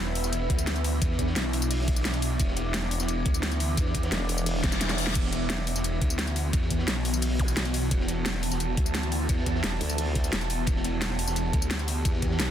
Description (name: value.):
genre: dark technical drum and bass.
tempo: 174 BPM.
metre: 4/4.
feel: straight.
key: unclear.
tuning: A4 = 441 Hz.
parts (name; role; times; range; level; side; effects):
swarming drone; sustained chords; 0.0-12.5 s; E3 to G4; -34 LUFS; equal; built-in reverb, sidechain pumping.
snarling distorted saw bass; bass; 0.0-12.5 s; E1 to E2; -29 LUFS; equal; distortion, tube saturation.
deep dark ambient pad; texture; 0.0-12.5 s; B3 to D6; -35 LUFS; right 2 dB; chorus, built-in reverb, sidechain pumping.
dubstep drum kit; drums; 0.1-12.5 s; crash cymbal, hi-hat, snare drum, tambourine; -30 LUFS; left 1 dB; none.
crunchy breakbeat drum kit; drums; 0.2-12.5 s; hi-hat, ride cymbal, snare drum; -39 LUFS; equal; high-pass filter on cymbals, high-pass filter on hats, high-pass filter on snare, high-pass filter on room.
electronic kick drum; drums; 0.5-12.3 s; none; -27 LUFS; equal; overdrive.
formant-sweep wobble bass; bass; 4.1-4.6, 9.8-10.3 s; E1 to D2; -29 LUFS; equal; chorus.
reverse cymbal and zap; sound effects; 4.6-5.2, 7.4-7.5 s; none; -36 LUFS; left 3 dB; none.
room: little or no reverb.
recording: dense, heavily limited modern master.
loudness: -24 LUFS.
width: side -10 dB against mid.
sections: 0.0-12.5 A section.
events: reverse cymbal 4.6-5.2; drum fill 4.6-5.2.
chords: 0.0 E5.